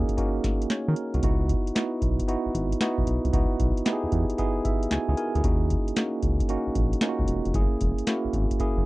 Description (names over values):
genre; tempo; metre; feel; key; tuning
R&B, new jack swing; 114 BPM; 4/4; swing 67% on 16ths; C# dorian; A4 = 440 Hz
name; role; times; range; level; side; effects
tine electric piano; accompaniment; 0.0-8.9 s; A3 to G#5; -27 LUFS; right 2 dB; medium stereo tremolo
round analog bass; bass; 0.0-8.8 s; E1 to D#3; -26 LUFS; equal; none
booming analog drum machine; drums; 0.1-8.8 s; handclaps, hi-hat, kick drum, snare drum; -26 LUFS; equal; none
room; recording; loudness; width
little or no reverb; dry, close 1970s-style studio recording; -23 LUFS; side -19 dB against mid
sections
0.0-8.9 A section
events
tine electric piano fill 4.4-5.4, 8.6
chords
0.0 D#m7; 1.2 C#m11; 5.4 D#m7; 7.5 F#7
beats
0.17 0.70 | 1.23 1.75 2.28 2.81 | 3.33 3.86 4.39 4.91 | 5.44 5.96 6.49 7.02 | 7.54 8.07 8.60